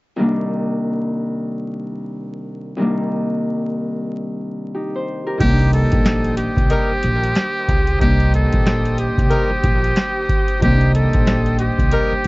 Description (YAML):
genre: hip hop, boom-bap hip-hop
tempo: 92 BPM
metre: 4/4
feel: swing 58% on 16ths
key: C dorian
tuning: A4 = 440 Hz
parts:
  - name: Celtic harp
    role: accompaniment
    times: 0.2-12.3 s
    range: C2 to C5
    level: -22 LUFS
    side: left 1 dB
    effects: high-pass filter, low-pass filter
  - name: trumpet with metal mute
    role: melody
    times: 5.4-12.3 s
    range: G4 to A4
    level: -22 LUFS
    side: equal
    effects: high-pass filter, low-pass filter, ping-pong delay
  - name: rich studio string section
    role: sustained chords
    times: 5.4-12.3 s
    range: G4 to Eb6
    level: -28 LUFS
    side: equal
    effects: high-pass filter, low-pass filter
  - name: upright bass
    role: bass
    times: 5.4-12.3 s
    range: Bb1 to Db2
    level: -19 LUFS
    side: equal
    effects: transformer saturation
  - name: booming analog drum machine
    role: drums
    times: 5.4-12.3 s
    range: crash cymbal, handclaps, hi-hat, kick drum, snare drum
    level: -19 LUFS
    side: equal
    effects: vintage 12-bit sampler grit
  - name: finger snap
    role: percussion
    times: 6.1-11.4 s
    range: none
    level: -36 LUFS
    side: left 1 dB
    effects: none
  - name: clear horn section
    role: stabs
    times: 6.7-12.1 s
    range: G3 to Bb4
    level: -23 LUFS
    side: left 2 dB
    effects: high-pass filter, low-pass filter, ping-pong delay
room: little or no reverb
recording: worn, warbling old tape, cassette tape, vinyl crackle, warbly pitch drift, nothing above 7.7 kHz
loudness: -16 LUFS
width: side -23 dB against mid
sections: 0.2-5.4 A section; 5.4-12.3 B section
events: none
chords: 0.2 Cm7